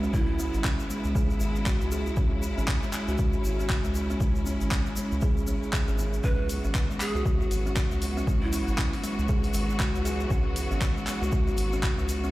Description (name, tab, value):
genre	afro house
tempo	118 BPM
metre	4/4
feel	swing 59% on 16ths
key	C# minor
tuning	A4 = 440 Hz
part	clear studio string section	sustained chords	0.0-12.3 s	C#3 to F#4	-36 LUFS	left 1 dB	sidechain pumping
part	kalimba	arpeggios	0.0-12.3 s	G#3 to G#4	-32 LUFS	equal	sidechain pumping, digital delay
part	round analog bass	bass	0.0-12.3 s	G#1 to C#2	-30 LUFS	equal	sidechain pumping
part	egg shaker	percussion	0.0-12.3 s	none	-42 LUFS	left 2 dB	none
part	breathy mellow large pan pipes	melody	0.1-0.6, 6.2-8.9 s	E4 to B4	-36 LUFS	right 2 dB	digital delay
part	electronic kick drum	drums	0.1-12.0 s	none	-28 LUFS	equal	none
part	deep house drum kit	drums	0.6-12.2 s	handclaps, hi-hat	-34 LUFS	equal	none
room	small room ambience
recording	played on a big sound system in a bare room, large studio reverb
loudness	-24 LUFS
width	side -17 dB against mid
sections	0.0-12.3 A section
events	none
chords	0.0 C#m7